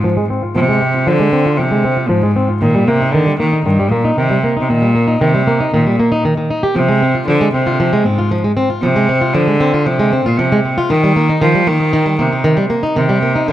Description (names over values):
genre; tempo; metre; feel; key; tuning
folktronica; 116 BPM; 4/4; straight; F dorian; A4 = 440 Hz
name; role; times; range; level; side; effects
rich cello; melody; 0.0-13.5 s; G2 to F3; -14 LUFS; equal; none
fingerpicked plugged-in swing-style acoustic guitar; arpeggios; 0.0-13.5 s; Eb3 to G4; -15 LUFS; equal; low-pass filter
room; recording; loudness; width
moderate echo chamber reverb, RT60 2.3 s; dark, warm production, vinyl crackle; -11 LUFS; side -12 dB against mid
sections
0.0-13.5 A section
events
filter sweep on steel-string acoustic guitar 0.0-13.5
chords
0.0 Fm; 2.6 Eb; 6.8 Fm; 10.9 Eb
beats
0.03 | 0.55 1.07 1.59 2.10 | 2.62 3.14 3.65 4.17 | 4.69 5.21 5.72 6.24 | 6.76 7.28 7.79 8.31 | 8.83 9.34 9.86 10.38 | 10.90 11.41 11.93 12.45 | 12.96 13.48